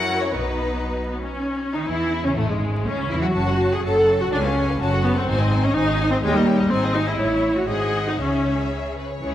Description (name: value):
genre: quick classical-period movement for string orchestra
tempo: 114-128 BPM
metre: 2/4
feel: rubato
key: C# minor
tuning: A4 = 441 Hz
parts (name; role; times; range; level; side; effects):
- rich chamber violin section; melody; 0.0-9.3 s; G#3 to A5; -30 LUFS; left 5 dB; none
- rich chamber violin section; second line; 0.0-9.3 s; G#3 to D#5; -29 LUFS; left 2 dB; none
- rich chamber viola section; accompaniment; 0.0-9.3 s; E3 to A4; -22 LUFS; equal; none
- clear chamber cello section; bass; 0.0-9.3 s; C#2 to F#4; -26 LUFS; right 1 dB; none
- rich symphonic double bass section; bass; 0.0-9.3 s; F#1 to F#2; -27 LUFS; right 1 dB; none
room: wet concert hall reverb, RT60 2.2 s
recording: vinyl crackle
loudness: -19 LUFS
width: side -12 dB against mid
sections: 0.0-1.4 A section; 1.4-9.2 B section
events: none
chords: 0.3 B; 1.4 C#m; 2.4 N.C.; 2.9 C#m; 3.4 F#m; 4.3 C#7; 4.8 F#m; 5.3 G#; 6.2 D#7; 6.7 G#; 7.2 A; 7.7 G#7; 8.2 C#m